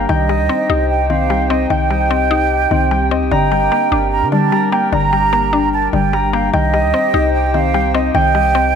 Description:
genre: hip hop.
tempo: 149 BPM.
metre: 4/4.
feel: half-time.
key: unclear.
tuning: A4 = 440 Hz.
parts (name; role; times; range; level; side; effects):
mellow hollow silver concert flute; second line; 0.0-8.8 s; Eb5 to Bb5; -18 LUFS; right 8 dB; digital delay.
mallet-like synth pluck; accompaniment; 0.0-8.8 s; D3 to Eb4; -20 LUFS; left 6 dB; chorus.
hollow soft pad; sustained chords; 0.0-8.8 s; D4 to G5; -24 LUFS; right 2 dB; chorus.
Celtic harp; arpeggios; 0.0-8.8 s; G3 to Bb5; -19 LUFS; left 5 dB; digital delay.
clean 808-style bass; bass; 0.0-8.8 s; G1 to D3; -19 LUFS; equal; none.
room: light reverb, small room ambience.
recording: none.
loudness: -12 LUFS.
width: side -7 dB against mid.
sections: 0.0-8.8 A section.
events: none.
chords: 0.1 Cm; 3.3 Gm; 6.5 Cm.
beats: | 0.09 0.49 0.90 1.30 | 1.70 2.11 2.51 2.91 | 3.31 3.72 4.12 4.52 | 4.92 5.33 5.73 6.13 | 6.54 6.94 7.34 7.74 | 8.15 8.55.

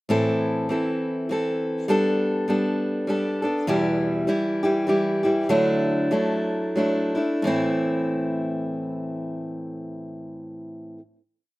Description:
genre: acoustic folk duo or small band.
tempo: 87-101 BPM.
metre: 3/4.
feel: swing 59% on 8ths.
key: A dorian.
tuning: A4 = 440 Hz.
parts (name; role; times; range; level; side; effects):
picked steel-string acoustic guitar; solo; 0.1-11.0 s; E2 to A4; -22 LUFS; equal; slapback echo.
room: little or no reverb.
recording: recorded outdoors, with no room sound.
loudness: -21 LUFS.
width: side -19 dB against mid.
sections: 0.1-7.5 interlude; 7.5-11.6 final chord.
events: slowing down 3.7-7.5.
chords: 0.1 Am; 1.9 Gadd9; 3.7 Em; 5.5 Dadd9; 7.5 Am.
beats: | 0.10 0.69 1.29 | 1.89 2.49 3.08 | 3.68 4.28 4.88 | 5.50 6.13 6.78 | 7.45 8.14 8.82 | 9.51 10.20 10.89.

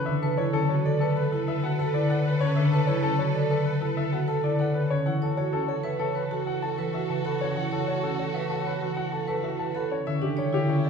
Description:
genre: classical, minimalist pattern music.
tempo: 96 BPM.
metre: 4/4.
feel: straight.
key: unclear.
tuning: A4 = 442 Hz.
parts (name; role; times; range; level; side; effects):
clear baby grand piano; melody; 0.0-10.9 s; G4 to A5; -30 LUFS; left 4 dB; none.
concert harp; accompaniment; 0.0-10.9 s; C#3 to C#4; -26 LUFS; left 1 dB; none.
vibraphone with medium hard mallets; arpeggios; 0.0-10.9 s; C#4 to C#5; -30 LUFS; right 6 dB; none.
rich chamber string section; sustained chords; 0.1-10.9 s; E4 to B4; -36 LUFS; equal; none.
room: wet large studio reverb, RT60 1.3 s.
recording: heard from further back in the room.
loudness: -24 LUFS.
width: side -6 dB against mid.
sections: 0.0-10.1 A section.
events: none.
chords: 0.1 Bm9; 5.1 F#m7; 10.1 Em7.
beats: | 0.07 0.69 1.32 1.94 | 2.57 3.19 3.82 4.44 | 5.07 5.69 6.32 6.94 | 7.57 8.19 8.82 9.44 | 10.07 10.69.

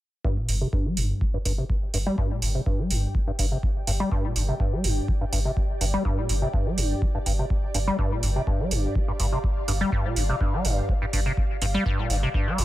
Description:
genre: acid house.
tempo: 124 BPM.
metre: 4/4.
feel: straight.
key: G minor.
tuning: A4 = 440 Hz.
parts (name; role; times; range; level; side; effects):
liquid acid bass; riff; 0.2-12.6 s; G2 to Bb3; -27 LUFS; equal; chorus, overdrive, sidechain pumping, ping-pong delay.
electronic kick drum; drums; 0.2-12.4 s; none; -26 LUFS; equal; overdrive.
ethereal airy pad; texture; 2.0-12.6 s; G4 to G5; -36 LUFS; right 1 dB; ensemble chorus, built-in reverb, sidechain pumping.
round analog bass; bass; 0.5-12.6 s; G1; -26 LUFS; equal; sidechain pumping.
electronic hi-hat; drums; 0.5-12.6 s; none; -31 LUFS; right 4 dB; overdrive.
room: little or no reverb.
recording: none.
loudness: -22 LUFS.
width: side -15 dB against mid.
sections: 0.2-12.6 A section.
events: fade-in on ambient pad 0.2-12.6; filter sweep on acid bass 0.2-12.6; filter sweep on analog synth bass 0.2-12.6.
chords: 0.2 G5.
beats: | 0.25 0.73 1.21 1.70 | 2.18 2.67 3.15 3.63 | 4.12 4.60 5.08 5.57 | 6.05 6.54 7.02 7.50 | 7.99 8.47 8.96 9.44 | 9.92 10.41 10.89 11.38 | 11.86 12.34.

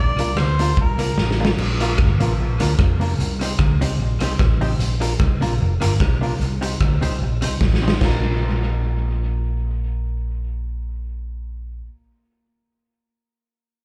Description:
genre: ska.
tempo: 149 BPM.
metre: 4/4.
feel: swing 54% on 8ths.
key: Bb major.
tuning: A4 = 440 Hz.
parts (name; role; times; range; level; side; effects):
mellow harmonica; melody; 0.0-1.4 s; Bb4 to D5; -27 LUFS; equal; slapback echo.
fingered electric bass; bass; 0.0-11.8 s; F1 to F2; -23 LUFS; equal; none.
hollow-body jazz guitar; accompaniment; 0.2-11.9 s; Bb3 to C5; -30 LUFS; equal; tape echo, slapback echo.
raw garage drum kit; drums; 0.2-8.1 s; china cymbal, crash cymbal, hi-hat, kick drum, rim click, snare drum; -24 LUFS; equal; tape echo.
room: little or no reverb.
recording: live gig heard through the venue's PA, club ambience.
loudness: -20 LUFS.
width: mono.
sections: 0.0-1.6 A section; 1.6-8.0 B section; 8.0-11.2 C section.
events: drum fill 1.2-1.6, 7.6-8.0.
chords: 0.0 Bb; 3.2 Cm; 4.8 Bb; 6.4 Cm; 8.0 Bb.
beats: 0.37 0.78 1.18 | 1.58 1.98 2.38 2.79 | 3.19 3.59 3.99 4.39 | 4.79 5.20 5.60 6.00 | 6.40 6.80 7.20 7.61 | 8.01 8.41 8.81 9.21 | 9.62 10.02 10.42 10.82.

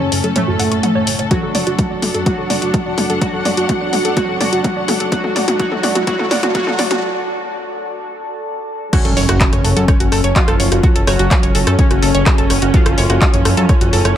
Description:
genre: melodic techno.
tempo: 126 BPM.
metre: 4/4.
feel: straight.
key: F# harmonic minor.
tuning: A4 = 440 Hz.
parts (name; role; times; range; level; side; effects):
resonant sweep polysynth; melody; 0.0-14.1 s; A2 to F#4; -21 LUFS; left 1 dB; chorus, vintage 12-bit sampler grit, sidechain pumping, dub echo.
deep dark ambient pad; sustained chords; 4.8-14.2 s; C#4 to B5; -26 LUFS; equal; chorus, built-in reverb, sidechain pumping.
warbly dusty pluck; arpeggios; 0.0-14.1 s; F#4 to C#6; -21 LUFS; right 2 dB; chorus, sidechain pumping, digital delay.
fat analog bass; bass; 0.0-14.1 s; F#1 to F#2; -19 LUFS; equal; sidechain pumping.
swarming drone; drone; 0.0-7.0 s; F#2 to A3; -32 LUFS; equal; none.
dark symphonic string section; texture; 0.0-14.2 s; C#4 to A5; -25 LUFS; right 1 dB; sidechain pumping.
house drum kit; drums; 0.1-14.1 s; crash cymbal, handclaps, hi-hat, rim click, toms; -20 LUFS; left 2 dB; small room ambience.
electronic kick drum; drums; 1.3-13.8 s; none; -15 LUFS; equal; overdrive, small room ambience.
riser and impact; sound effects; 3.8-10.8 s; none; -26 LUFS; equal; none.
room: light reverb, digital ambience.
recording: high-pass filter.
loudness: -12 LUFS.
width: side -10 dB against mid.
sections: 0.0-8.9 A section; 8.9-14.2 B section.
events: build-up 0.0-8.9; drum fill 0.0-7.0; filter sweep on synth arpeggio sound 0.0-8.9; filter sweep on ambient pad 0.0-8.9; riser 3.8-7.0; break 7.0-8.9; drop 8.9-14.2; impact 8.9-10.8.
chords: 0.0 F#m; 1.3 D/F#; 8.9 F#m.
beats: 0.36 0.83 | 1.31 1.79 2.26 2.74 | 3.22 3.69 4.17 4.64 | 5.12 5.60 6.07 6.55 | 7.03 7.50 7.98 8.45 | 8.93 9.41 9.88 10.36 | 10.84 11.31 11.79 12.26 | 12.74 13.22 13.69 14.17.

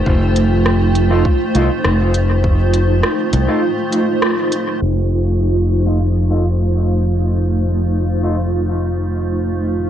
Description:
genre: ambient dub.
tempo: 101 BPM.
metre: 4/4.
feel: straight.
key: F mixolydian.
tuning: A4 = 440 Hz.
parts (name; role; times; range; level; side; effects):
granular cloud pad; sustained chords; 0.0-9.9 s; A3 to G5; -18 LUFS; right 1 dB; built-in reverb.
modern bright fingered electric bass; bass; 0.0-9.9 s; F1 to C2; -16 LUFS; equal; none.
electronic kick drum; drums; 0.1-2.6 s; none; -16 LUFS; equal; cassette tape.
organic electronic drum kit; drums; 0.4-4.6 s; hi-hat, rim click; -23 LUFS; equal; cassette tape, dub echo.
mellow electric guitar; stabs; 1.1-8.4 s; A3 to F4; -25 LUFS; equal; low-pass filter, dub echo.
room: light reverb.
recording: home recording on cassette, low-pass filter.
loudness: -14 LUFS.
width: side -10 dB against mid.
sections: 0.0-4.8 A section; 4.8-9.9 B section.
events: break 3.6-4.8; band accent 4.2; filter sweep on clean electric guitar 4.8-9.9; filter sweep 4.8-9.9.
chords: 0.0 F7.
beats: | 0.06 0.66 1.25 1.85 | 2.44 3.03 3.63 4.22 | 4.82 5.41 6.00 6.60 | 7.19 7.79 8.38 8.97 | 9.57.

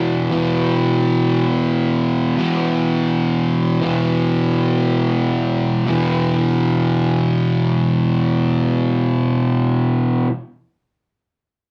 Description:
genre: metal.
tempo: free time.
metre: none.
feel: none.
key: unclear.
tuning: A4 = 442 Hz.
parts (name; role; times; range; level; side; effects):
fuzz guitar; solo; 0.0-10.3 s; E2 to E3; -18 LUFS; equal; distortion.
room: wet studio reverb, RT60 0.6 s.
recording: band playing live in one room.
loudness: -18 LUFS.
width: mono.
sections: 0.0-5.9 A section; 5.9-9.4 B section.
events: none.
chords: 0.0 E5.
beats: free time.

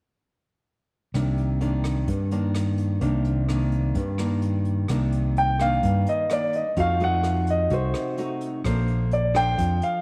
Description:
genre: bossa nova.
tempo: 128 BPM.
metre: 4/4.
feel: straight.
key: C minor.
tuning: A4 = 441 Hz.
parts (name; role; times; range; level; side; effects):
nylon-string guitar; accompaniment; 1.1-10.0 s; G2 to C5; -30 LUFS; equal; none.
fingered electric bass; bass; 1.1-9.8 s; Bb1 to G2; -26 LUFS; equal; none.
jazz brush drum kit; drums; 1.1-9.9 s; hi-hat, kick drum, rim click; -39 LUFS; equal; none.
dark concert grand piano; melody; 5.4-10.0 s; C5 to G5; -26 LUFS; equal; slapback echo.
room: moderate echo chamber reverb, RT60 2.1 s.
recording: none.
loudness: -24 LUFS.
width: mono.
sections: 1.1-4.9 A section; 4.9-10.0 B section.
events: none.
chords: 1.1 Cm9; 6.8 F7b9; 8.6 Bbmaj9.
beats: | 1.14 1.61 2.08 2.55 | 3.02 3.49 3.96 4.43 | 4.90 5.36 5.83 6.30 | 6.77 7.24 7.71 8.18 | 8.65 9.12 9.58.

